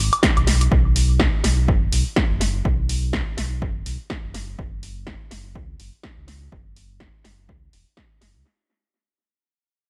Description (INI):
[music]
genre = deep house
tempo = 124 BPM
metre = 4/4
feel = swing 57% on 16ths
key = unclear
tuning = A4 = 443 Hz
[part]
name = sub bass with octave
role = bass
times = 0.0-8.4 s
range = E1 to C#2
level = -24 LUFS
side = equal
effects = tube saturation, sidechain pumping
[part]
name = punchy analog drum machine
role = drums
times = 0.1-8.3 s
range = hi-hat, snare drum, woodblock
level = -26 LUFS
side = equal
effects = studio reverb, analog delay
[part]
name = electronic kick drum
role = drums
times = 0.2-8.1 s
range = none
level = -25 LUFS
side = equal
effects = studio reverb
[sound]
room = little or no reverb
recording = echo-heavy mix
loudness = -20 LUFS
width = mono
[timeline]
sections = 0.0-8.5 A section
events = fade-out 0.0-8.5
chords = none